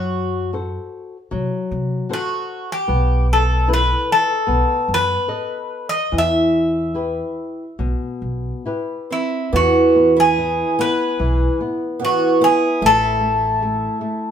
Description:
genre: fado-style ballad.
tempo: 72 BPM.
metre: 4/4.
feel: uneven beats, rubato.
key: E minor, E major from 9.5 s.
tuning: A4 = 439 Hz.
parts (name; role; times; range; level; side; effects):
Greek bouzouki; melody; 0.0-14.3 s; E4 to E5; -19 LUFS; left 1 dB; none.
flamenco guitar; accompaniment; 0.0-14.3 s; B2 to D#5; -22 LUFS; left 2 dB; none.
upright bass; bass; 0.0-13.9 s; A1 to C3; -22 LUFS; equal; none.
picked twelve-string acoustic guitar; second line; 9.1-14.3 s; B3 to G#4; -20 LUFS; right 5 dB; none.
room: wet stone room reverb, RT60 0.9 s.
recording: band playing live in one room.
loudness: -16 LUFS.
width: side -8 dB against mid.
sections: 0.0-9.5 A section; 9.5-14.3 B section.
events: none.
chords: 0.0 F#dim; 2.9 B7sus4; 4.5 B7; 6.1 Em; 9.5 E; 12.8 A5.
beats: 0.53 1.32 2.09 | 2.88 3.68 4.48 5.30 | 6.13 6.95 7.79 8.66 | 9.53 10.37 11.20 12.01 | 12.82 13.62.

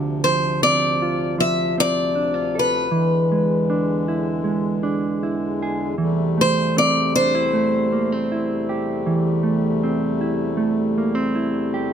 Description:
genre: acoustic folk-pop ballad.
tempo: 78 BPM.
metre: 4/4.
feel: straight.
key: unclear.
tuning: A4 = 438 Hz.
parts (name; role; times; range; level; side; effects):
mellow electric guitar; accompaniment; 0.0-11.9 s; D3 to A4; -21 LUFS; right 3 dB; none.
hand-pumped harmonium; sustained chords; 0.0-11.9 s; D2 to A3; -28 LUFS; left 8 dB; none.
picked steel-string acoustic guitar; melody; 0.2-11.3 s; B4 to E5; -21 LUFS; left 2 dB; none.
room: little or no reverb.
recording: close, detailed microphones.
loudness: -18 LUFS.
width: side -8 dB against mid.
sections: 0.0-11.9 A section.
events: none.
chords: 0.0 Dm7; 2.9 E7; 6.0 Am7/E.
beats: 0.60 1.37 2.14 | 2.91 3.68 4.45 5.21 | 5.98 6.75 7.52 8.29 | 9.05 9.82 10.59 11.36.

